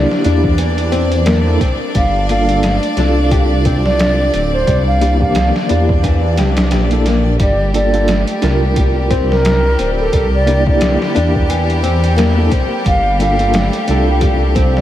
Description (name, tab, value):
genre	trip hop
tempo	88 BPM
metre	4/4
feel	swing 58% on 16ths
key	G dorian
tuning	A4 = 440 Hz
part	mellow hollow silver concert flute	melody	0.0-14.8 s	A4 to F5	-19 LUFS	right 1 dB	tape echo
part	tine electric piano	accompaniment	0.0-14.8 s	E3 to Bb4	-21 LUFS	equal	fast stereo tremolo, vintage 12-bit sampler grit, tape echo
part	clear studio violin section	sustained chords	0.0-14.8 s	G3 to D5	-22 LUFS	left 1 dB	none
part	nylon-string guitar	arpeggios	0.0-14.8 s	D3 to G4	-21 LUFS	left 2 dB	lush chorus, tape echo
part	dark detuned saw bass	bass	0.0-14.8 s	D1 to E2	-15 LUFS	equal	none
part	trip hop sampler-style drum kit	drums	0.1-14.8 s	hi-hat, kick drum, snare drum	-19 LUFS	equal	overdrive
room	moderate huge ambient reverb, RT60 8.2 s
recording	dreamy mix soaked in reverb, vinyl crackle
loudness	-11 LUFS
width	side -12 dB against mid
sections	0.0-14.8 A section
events	none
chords	0.0 C7; 1.9 Gm7; 4.7 C7; 7.4 Gm7; 10.1 C7; 12.9 Gm7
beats	0.58 1.26 | 1.95 2.63 3.31 3.99 | 4.67 5.35 6.04 6.72 | 7.40 8.08 8.76 9.45 | 10.13 10.81 11.49 12.17 | 12.85 13.54 14.22